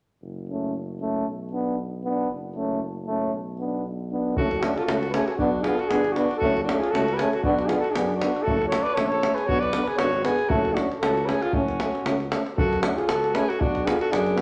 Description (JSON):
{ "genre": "balkan folk, Balkan brass band", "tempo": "117 BPM", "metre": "2/4", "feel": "swing 55% on 16ths", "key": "F# harmonic minor", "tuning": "A4 = 440 Hz", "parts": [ { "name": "mellow tuba", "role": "bass", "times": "0.2-14.4 s", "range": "F#1 to F#2", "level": "-35 LUFS", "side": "equal", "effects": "none" }, { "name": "clear euphonium", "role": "accompaniment", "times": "0.5-14.4 s", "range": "A3 to B3", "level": "-32 LUFS", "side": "equal", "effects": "none" }, { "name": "warm euphonium", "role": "accompaniment", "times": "0.5-14.4 s", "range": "C#4 to D4", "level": "-32 LUFS", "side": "equal", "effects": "none" }, { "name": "mellow flugelhorn", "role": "melody", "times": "4.4-14.4 s", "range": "F#4 to D5", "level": "-29 LUFS", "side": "equal", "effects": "none" }, { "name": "clear alto saxophone", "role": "second line", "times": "4.4-14.4 s", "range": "C#4 to B4", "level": "-30 LUFS", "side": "equal", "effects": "none" }, { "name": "davul", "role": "percussion", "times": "4.4-14.4 s", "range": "none", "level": "-31 LUFS", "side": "equal", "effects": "none" } ], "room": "moderate large studio reverb, RT60 1.2 s", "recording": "none", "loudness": "-25 LUFS", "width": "mono", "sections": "0.2-4.4 A section; 4.4-12.6 B section; 12.6-14.4 B section", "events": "none", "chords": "0.2 F#m; 1.3 Bm; 2.3 F#m; 3.3 Bm; 4.4 F#m; 5.4 Bm; 6.4 F#m; 7.4 Bm; 8.5 F#m; 9.5 Bm; 10.5 F#m; 13.6 Bm" }